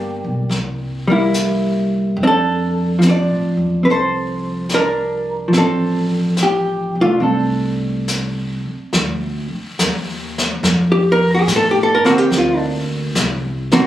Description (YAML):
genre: jazz ballad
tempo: 71 BPM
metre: 4/4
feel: swing 69% on 8ths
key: F major, Bb major from 8.9 s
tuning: A4 = 442 Hz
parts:
  - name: hollow-body jazz guitar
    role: accompaniment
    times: 0.0-13.9 s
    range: D3 to D5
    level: -15 LUFS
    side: equal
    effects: none
  - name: upright bass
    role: bass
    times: 0.0-13.9 s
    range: G1 to A2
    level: -22 LUFS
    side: equal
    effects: none
  - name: jazz brush drum kit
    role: drums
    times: 0.5-13.9 s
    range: brushed snare drum, hi-hat, snare drum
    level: -24 LUFS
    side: left 1 dB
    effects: none
room: light reverb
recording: recorded on a phone in the room, club reverb, compression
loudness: -15 LUFS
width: side -13 dB against mid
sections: 0.0-8.9 A section; 8.9-13.9 B section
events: none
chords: 0.0 Gm; 0.5 C7; 2.2 F6; 8.9 Bbmaj7; 12.3 D7(#5, no3)